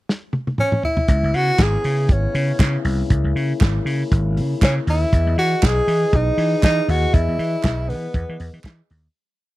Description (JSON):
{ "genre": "disco", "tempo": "119 BPM", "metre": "4/4", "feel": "swing 56% on 16ths", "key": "unclear", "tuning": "A4 = 439 Hz", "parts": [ { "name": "warm soul drum kit", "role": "drums", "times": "0.1-9.0 s", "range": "hi-hat, kick drum, snare drum, toms", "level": "-17 LUFS", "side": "equal", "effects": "none" }, { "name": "breathy tenor saxophone", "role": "melody", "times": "0.6-8.6 s", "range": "B3 to G#4", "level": "-21 LUFS", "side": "equal", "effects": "none" }, { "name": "mellow French horn section", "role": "sustained chords", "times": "1.1-9.1 s", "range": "C#3 to D#5", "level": "-28 LUFS", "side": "left 4 dB", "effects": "stereo widening" }, { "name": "vintage slap bass", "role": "bass", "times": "1.1-9.1 s", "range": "G#1 to E3", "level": "-20 LUFS", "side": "equal", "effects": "none" }, { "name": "group handclap", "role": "percussion", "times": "1.6-8.8 s", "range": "none", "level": "-31 LUFS", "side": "right 7 dB", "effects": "none" } ], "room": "small room ambience", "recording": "dry, close 1970s-style studio recording", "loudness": "-16 LUFS", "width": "side -17 dB against mid", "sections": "0.0-1.1 pickup bar; 1.1-9.1 groove", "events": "drum fill 0.1-1.1; fade-out 7.1-9.1", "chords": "0.0 N.C.; 1.1 C#m7; 5.1 Emaj7" }